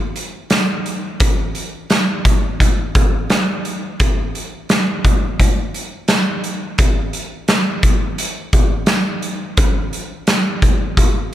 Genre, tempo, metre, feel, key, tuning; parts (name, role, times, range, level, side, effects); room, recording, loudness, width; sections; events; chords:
dream pop; 86 BPM; 4/4; straight
oversized low-tuned drum kit; drums; 0.2-11.1 s; hi-hat, kick drum, snare drum, tambourine; -15 LUFS; equal
little or no reverb; -15 LUFS; side -12 dB against mid
0.0-11.3 A section